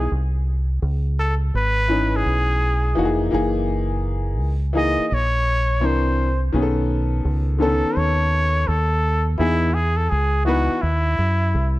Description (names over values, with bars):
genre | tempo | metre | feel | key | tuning
hip hop | 84 BPM | 4/4 | swing 65% on 16ths | E major | A4 = 440 Hz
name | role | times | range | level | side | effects
trumpet with straight mute | melody | 0.0-11.8 s | E4 to D#5 | -23 LUFS | equal | none
bright baby grand piano | accompaniment | 0.0-10.8 s | D3 to B4 | -23 LUFS | left 2 dB | none
deep dub fingered electric bass | bass | 0.0-11.8 s | F1 to F#2 | -20 LUFS | equal | none
room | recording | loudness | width
light reverb, small room ambience | dark, warm production | -18 LUFS | side -17 dB against mid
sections
0.0-11.8 A section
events
none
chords
0.0 N.C.; 0.8 C#m9; 3.3 F#13; 5.8 C9; 6.5 B9; 9.4 Emaj7